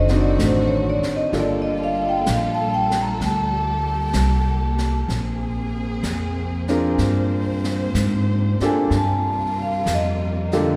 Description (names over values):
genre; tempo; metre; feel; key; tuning
jazz ballad; 63 BPM; 4/4; swing 68% on 8ths; Bb major; A4 = 436 Hz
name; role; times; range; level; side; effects
vibraphone with medium hard mallets; melody; 0.0-10.8 s; C5 to Bb5; -26 LUFS; equal; none
warm concert grand piano; accompaniment; 0.0-10.8 s; D3 to C5; -26 LUFS; equal; none
warm symphonic string section; sustained chords; 0.0-10.8 s; C3 to C5; -31 LUFS; equal; none
upright bass; bass; 0.0-10.8 s; F#1 to Ab2; -25 LUFS; equal; none
jazz brush drum kit; drums; 0.1-10.8 s; brushed snare drum, hi-hat, snare drum; -36 LUFS; equal; none
room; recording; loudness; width
wet concert hall reverb, RT60 2.2 s; recorded in a church or concert hall; -21 LUFS; mono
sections
0.0-10.8 A section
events
vibraphone solo 0.0-10.8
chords
0.0 D7b9; 1.3 Gm9; 5.1 Bb9; 8.9 Ebmaj9#11